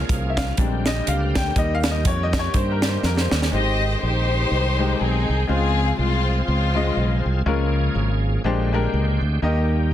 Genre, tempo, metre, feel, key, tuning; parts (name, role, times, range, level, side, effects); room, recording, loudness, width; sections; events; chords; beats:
uptempo gospel; 122 BPM; 4/4; swing 58% on 8ths; Ab major; A4 = 440 Hz
bright grand piano; accompaniment; 0.0-9.9 s; Ab2 to G5; -26 LUFS; left 4 dB
bright tonewheel organ; sustained chords; 0.0-9.9 s; D3 to G5; -31 LUFS; right 2 dB; slow rotary speaker, overdrive, chorus vibrato
mellow French horn section; sustained chords; 0.0-3.5 s; G3 to G4; -35 LUFS; right 1 dB
modern bright fingered electric bass; bass; 0.0-9.9 s; Ab1 to G2; -22 LUFS; right 1 dB
tight funk drum kit; drums; 0.1-3.5 s; hi-hat, kick drum, snare drum; -23 LUFS; right 1 dB
warm symphonic string section; melody; 3.5-7.4 s; Ab3 to Eb5; -24 LUFS; left 3 dB
light reverb, small room reverb; dense, heavily limited modern master; -18 LUFS; side -11 dB against mid
0.0-3.5 A section; 3.5-9.9 B section
grand piano solo 0.0-3.5; drum fill 3.0-3.5
0.0 Db6; 0.6 Bb13; 1.6 Eb; 3.5 Abmaj7; 5.5 Dbmaj7; 7.5 Bbm7/Db; 8.4 Bb13; 9.4 Eb
0.10 0.59 1.08 | 1.57 2.06 2.55 3.04 | 3.53 4.02 4.51 5.00 | 5.49 5.98 6.48 6.97 | 7.46 7.95 8.44 8.93 | 9.43 9.92